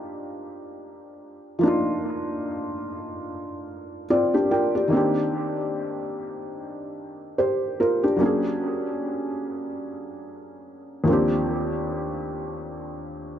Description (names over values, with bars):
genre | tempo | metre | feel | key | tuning
R&B | 73 BPM | 4/4 | swing 58% on 16ths | C minor | A4 = 440 Hz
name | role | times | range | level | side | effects
felt-muted upright piano | solo | 0.0-13.4 s | Eb2 to G5 | -24 LUFS | equal | dub echo
room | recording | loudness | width
light reverb, small room ambience | echo-heavy mix | -22 LUFS | side -10 dB against mid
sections
0.0-4.9 A section; 4.9-13.4 B section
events
felt piano fill 3.7-4.9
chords
0.0 Ebmaj7; 4.9 Cm7; 8.2 Bb7alt; 11.1 Ebmaj13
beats
0.80 | 1.63 2.45 3.27 4.09 | 4.91 5.74 6.56 7.38 | 8.20 9.02 9.85 10.67 | 11.49 12.31 13.13